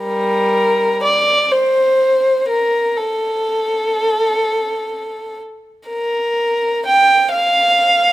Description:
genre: classical, free, expressive piece for unaccompanied violin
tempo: 38-43 BPM (dotted quarters)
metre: 6/8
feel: rubato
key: unclear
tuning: A4 = 442 Hz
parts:
  - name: dark violin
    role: solo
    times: 0.0-8.1 s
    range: G3 to G5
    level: -14 LUFS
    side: equal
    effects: none
room: light reverb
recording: close, detailed microphones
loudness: -13 LUFS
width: side -15 dB against mid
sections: 0.0-8.1 A section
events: none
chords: none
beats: 1.51 | 2.98 4.43 | 5.89 7.32

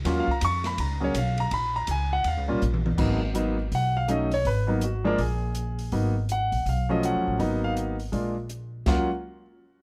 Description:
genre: jazz piano trio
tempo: 163 BPM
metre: 4/4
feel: swing 63% on 8ths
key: Eb minor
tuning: A4 = 442 Hz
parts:
  - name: upright bass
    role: bass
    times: 0.0-9.1 s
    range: Ab1 to F2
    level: -30 LUFS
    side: equal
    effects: none
  - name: open jazz drum kit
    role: drums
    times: 0.0-9.0 s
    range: crash cymbal, hi-hat, kick drum, ride cymbal, snare drum, toms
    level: -34 LUFS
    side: equal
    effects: none
  - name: clear baby grand piano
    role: melody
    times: 0.1-9.1 s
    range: F3 to Db6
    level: -28 LUFS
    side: equal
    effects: plate reverb
room: moderate studio reverb, RT60 0.5 s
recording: none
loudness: -26 LUFS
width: mono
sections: 0.0-3.0 A section; 3.0-8.9 B section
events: drum fill 2.6-3.0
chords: 0.0 Ebm9; 1.5 Bbm7; 2.2 Eb7(no3); 3.0 Abm9; 3.7 B7; 4.4 Abm9; 5.2 Absus2/Bb; 5.9 Abm9; 6.7 B7; 7.4 Abm9; 8.1 Bb7; 8.9 Ebm9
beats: | 0.05 0.41 0.78 1.15 | 1.51 1.88 2.25 2.61 | 2.98 3.35 3.71 4.08 | 4.45 4.82 5.18 5.55 | 5.92 6.29 6.66 7.02 | 7.39 7.76 8.13 8.50 | 8.87

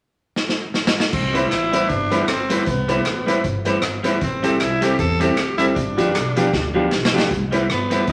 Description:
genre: ska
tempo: 155 BPM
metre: 4/4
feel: swing 56% on 8ths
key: C major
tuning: A4 = 445 Hz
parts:
  - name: street-band drum kit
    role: drums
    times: 0.4-8.1 s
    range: crash cymbal, hi-hat, kick drum, rim click, snare drum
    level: -25 LUFS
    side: equal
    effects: none
  - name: raspy tenor saxophone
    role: melody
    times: 1.1-8.1 s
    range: B3 to A4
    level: -26 LUFS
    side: equal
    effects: none
  - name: upright bass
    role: bass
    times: 1.1-8.1 s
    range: G1 to E2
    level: -29 LUFS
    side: equal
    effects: none
  - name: electric guitar through a small old amp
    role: accompaniment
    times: 1.3-8.0 s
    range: F3 to E4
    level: -25 LUFS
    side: equal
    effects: warbly pitch drift
  - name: warm upright piano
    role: stabs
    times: 1.3-8.1 s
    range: B3 to B4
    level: -25 LUFS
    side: equal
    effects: none
  - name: group handclap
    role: percussion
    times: 1.5-7.0 s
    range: none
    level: -37 LUFS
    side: equal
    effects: none
room: wet studio reverb, RT60 0.7 s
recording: none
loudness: -20 LUFS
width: mono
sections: 0.0-1.1 A section; 1.1-7.3 B section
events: drum fill 0.4-1.1, 6.5-7.3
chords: 0.0 N.C.; 1.1 Cmaj7; 4.2 Am7; 5.8 G7; 7.3 Cmaj7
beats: 0.36 0.74 | 1.13 1.51 1.90 2.29 | 2.67 3.06 3.44 3.83 | 4.21 4.60 4.99 5.37 | 5.76 6.15 6.53 6.92 | 7.30 7.69 8.08

